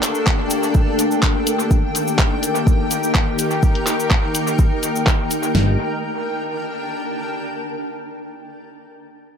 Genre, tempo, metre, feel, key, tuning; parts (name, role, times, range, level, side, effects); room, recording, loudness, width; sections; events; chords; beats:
melodic techno; 125 BPM; 4/4; straight; G minor; A4 = 440 Hz
sweeping resonant pad; sustained chords; 0.0-5.8 s; Eb3 to G4; -24 LUFS; left 2 dB; lush chorus, sidechain pumping
deep house drum kit; drums; 0.0-5.4 s; handclaps, hi-hat; -24 LUFS; equal; low-pass filter on hats, low-pass filter on snare, low-pass filter on room, dub echo
cabasa; percussion; 0.0-5.5 s; -27 LUFS; left 3 dB
granular cloud pad; texture; 0.0-7.4 s; D4 to A5; -23 LUFS; left 1 dB; built-in reverb, sidechain pumping
deep house drum kit; drums; 0.3-5.7 s; kick drum, snare drum; -17 LUFS; equal
fat analog bass; bass; 5.5-5.8 s; G1; -16 LUFS; equal; sidechain pumping
light reverb, digital ambience; echo-heavy mix; -17 LUFS; side -7 dB against mid
0.0-5.5 A section; 5.5-7.5 B section
0.0 Gmadd9; 1.7 Eb; 5.5 Gmadd9
0.27 0.75 1.23 | 1.71 2.19 2.67 3.15 | 3.63 4.11 4.59 5.07 | 5.55 6.03 6.51 6.99